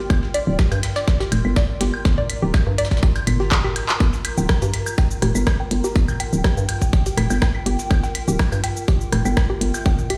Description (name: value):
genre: minimal techno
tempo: 123 BPM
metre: 4/4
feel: straight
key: G dorian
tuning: A4 = 440 Hz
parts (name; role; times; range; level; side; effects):
- warbly tape-like pad; texture; 0.0-10.2 s; F4 to Bb5; -35 LUFS; equal; chorus, built-in reverb, sidechain pumping
- hollow knocking FM bass; bass; 0.1-10.0 s; D1 to G2; -23 LUFS; equal; sidechain pumping
- breakbeat sampler-style drum kit; drums; 0.1-10.2 s; hi-hat, snare drum, tambourine; -37 LUFS; equal; high-pass filter on perc, high-pass filter on snare, high-pass filter on hats
- electronic kick drum; drums; 0.1-10.0 s; none; -20 LUFS; equal; none
- electronic woodblock, claves and toms; percussion; 0.1-10.2 s; none; -30 LUFS; equal; overdrive, digital delay
- hollow square pluck; riff; 0.3-10.1 s; G4 to G5; -30 LUFS; equal; chorus, sidechain pumping, digital delay
- minimal click drum kit; drums; 0.3-10.2 s; handclaps, hi-hat, rim click, shaker; -29 LUFS; equal; none
room: little or no reverb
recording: played on a big sound system in a bare room, stone room reverb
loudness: -20 LUFS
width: mono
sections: 0.0-10.2 A section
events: drum fill 3.5-4.0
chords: 0.0 Gm7